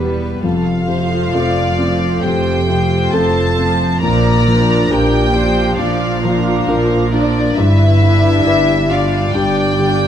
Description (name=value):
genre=cinematic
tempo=67 BPM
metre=4/4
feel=rubato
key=unclear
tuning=A4 = 440 Hz
part: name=warm studio violin section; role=melody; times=0.0-10.1 s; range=A4 to E5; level=-24 LUFS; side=left 4 dB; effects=none
part: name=dark studio viola section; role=accompaniment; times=0.0-10.1 s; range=F3 to D4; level=-21 LUFS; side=right 2 dB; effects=none
part: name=warm baby grand piano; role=accompaniment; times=0.0-10.1 s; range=E2 to B4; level=-20 LUFS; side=left 4 dB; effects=none
part: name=dark chamber cello section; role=bass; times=0.0-10.1 s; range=E2 to Bb2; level=-19 LUFS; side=right 2 dB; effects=none
part: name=dark studio double bass section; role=bass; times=0.0-10.1 s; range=E1 to Bb1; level=-20 LUFS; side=right 3 dB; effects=none
part: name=wooden-headed alto flute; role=melody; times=0.4-10.1 s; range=D4 to Bb4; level=-20 LUFS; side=left 1 dB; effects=none
part: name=warm studio violin section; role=second line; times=0.4-10.1 s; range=D5 to Bb5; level=-20 LUFS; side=left 2 dB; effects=none
room=light reverb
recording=close, detailed microphones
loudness=-12 LUFS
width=side -9 dB against mid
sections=0.0-10.1 A section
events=none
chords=0.4 F; 4.0 Bb; 7.6 G